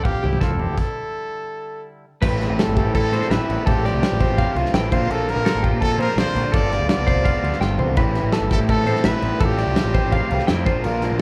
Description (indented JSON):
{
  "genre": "math rock and midwest emo",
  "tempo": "167 BPM",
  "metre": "4/4",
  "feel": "straight",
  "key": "A phrygian",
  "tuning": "A4 = 439 Hz",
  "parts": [
    { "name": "twangy electric guitar", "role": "accompaniment", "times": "0.0-11.2 s", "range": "E2 to G4", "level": "-34 LUFS", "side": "equal", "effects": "none" },
    { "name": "twelve-string electric guitar", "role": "arpeggios", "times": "0.0-11.2 s", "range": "G4 to G5", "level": "-29 LUFS", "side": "equal", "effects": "none" },
    { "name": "growling picked electric bass", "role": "bass", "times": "0.0-11.2 s", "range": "F1 to Bb2", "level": "-26 LUFS", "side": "equal", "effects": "overdrive" },
    { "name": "brilliant trumpet", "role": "melody", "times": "0.1-10.5 s", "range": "E4 to D5", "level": "-28 LUFS", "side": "equal", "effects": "none" },
    { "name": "loose indie drum kit", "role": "drums", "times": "0.1-11.1 s", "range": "crash cymbal, kick drum, snare drum, toms", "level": "-24 LUFS", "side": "equal", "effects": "none" },
    { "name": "crunchy overdriven guitar", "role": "riff", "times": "2.2-11.2 s", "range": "G2 to F4", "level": "-28 LUFS", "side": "equal", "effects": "none" }
  ],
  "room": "moderate large studio reverb, RT60 1.3 s",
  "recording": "band playing live in one room",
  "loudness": "-20 LUFS",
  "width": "mono",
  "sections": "0.0-2.2 A section; 2.2-11.2 B section",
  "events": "stop 0.8-2.2; drum fill 7.6-8.0",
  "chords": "0.0 Dm11; 0.8 Gsus2; 2.2 Am9; 3.7 Fadd9/A; 4.9 Bbmaj9; 6.5 G9sus4; 8.0 Am9; 9.4 Fmaj9/A; 10.7 Bbadd9",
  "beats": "0.05 0.42 | 0.78 1.14 1.50 1.86 | 2.22 2.58 2.94 3.30 | 3.66 4.02 4.38 4.74 | 5.09 5.45 5.81 6.17 | 6.53 6.89 7.25 7.61 | 7.97 8.33 8.69 9.05 | 9.40 9.77 10.12 10.48 | 10.84 11.20"
}